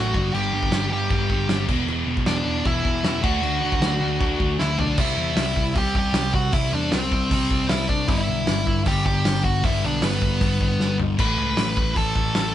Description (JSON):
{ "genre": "punk rock", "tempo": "155 BPM", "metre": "4/4", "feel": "straight", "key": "unclear", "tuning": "A4 = 441 Hz", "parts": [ { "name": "dark smooth lead guitar", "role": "melody", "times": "0.0-12.5 s", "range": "B3 to B5", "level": "-25 LUFS", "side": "equal", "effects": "overdrive" }, { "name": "sludgy distorted guitar", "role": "riff", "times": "0.0-12.5 s", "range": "E2 to D4", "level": "-25 LUFS", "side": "left 1 dB", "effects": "overdrive" }, { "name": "overdriven picked electric bass", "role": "bass", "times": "0.0-12.5 s", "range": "E1 to E2", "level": "-27 LUFS", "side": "equal", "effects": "none" }, { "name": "loose indie drum kit", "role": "drums", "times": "0.1-12.4 s", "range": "crash cymbal, hi-hat, kick drum, snare drum, splash cymbal, toms", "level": "-24 LUFS", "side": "equal", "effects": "none" } ], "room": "light reverb", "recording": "band playing live in one room, nothing above 11.0 kHz", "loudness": "-19 LUFS", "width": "side -12 dB against mid", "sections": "0.0-5.0 A section; 5.0-12.5 B section", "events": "drum fill 4.6-5.0, 10.8-11.2", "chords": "0.1 G5; 1.7 E5; 3.2 D; 5.0 C; 8.1 G; 11.2 A" }